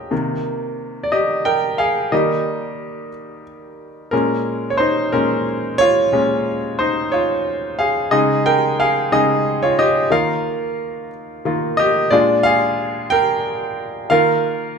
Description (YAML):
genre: pop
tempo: 60 BPM (dotted quarters)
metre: 6/8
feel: straight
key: unclear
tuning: A4 = 439 Hz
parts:
  - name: bright grand piano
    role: solo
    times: 0.0-14.8 s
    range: Bb2 to G5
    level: -16 LUFS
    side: equal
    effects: none
room: moderate large studio reverb, RT60 1.4 s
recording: band playing live in one room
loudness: -16 LUFS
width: side -6 dB against mid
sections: 0.0-8.1 A section; 8.1-14.8 B section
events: grand piano solo 0.0-8.1, 8.1-14.8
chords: 0.1 Cm7; 2.1 Eb; 4.1 Bbm7; 8.1 Dbsus2; 10.1 Ebsus2; 12.1 Bb7; 14.1 Ebsus2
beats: | 0.12 1.12 | 2.12 3.12 | 4.12 5.12 | 6.12 7.12 | 8.12 9.12 | 10.12 11.12 | 12.12 13.11 | 14.11